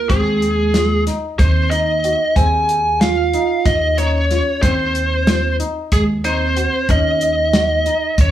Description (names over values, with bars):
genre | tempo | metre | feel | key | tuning
progressive instrumental, band music in an uneven meter | 186 BPM (eighths) | 7/8 | straight | Eb dorian | A4 = 442 Hz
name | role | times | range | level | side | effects
biting lead guitar | melody | 0.0-8.3 s | Ab4 to Ab5 | -17 LUFS | equal | overdrive
vibraphone with hard mallets | second line | 0.0-8.3 s | Ab3 to Ab4 | -23 LUFS | right 5 dB | none
dark grand piano | arpeggios | 0.1-8.2 s | C4 to Gb4 | -27 LUFS | left 5 dB | none
upright bass | bass | 0.1-8.3 s | Eb2 | -19 LUFS | equal | none
damped 70s drum kit | drums | 0.1-8.3 s | hi-hat, kick drum, snare drum | -18 LUFS | equal | none
room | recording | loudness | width
light reverb | small room ambience | -14 LUFS | side -12 dB against mid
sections
0.0-8.3 A section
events
none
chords
0.1 Ab/Eb; 2.4 Fm7/Eb; 4.6 Eb5; 6.9 Ebm7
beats
| 0.10 0.42 0.75 1.07 1.40 1.72 2.04 | 2.37 2.69 3.01 3.34 3.66 3.98 4.31 | 4.63 4.95 5.28 5.60 5.92 6.25 6.57 | 6.89 7.21 7.54 7.86 8.18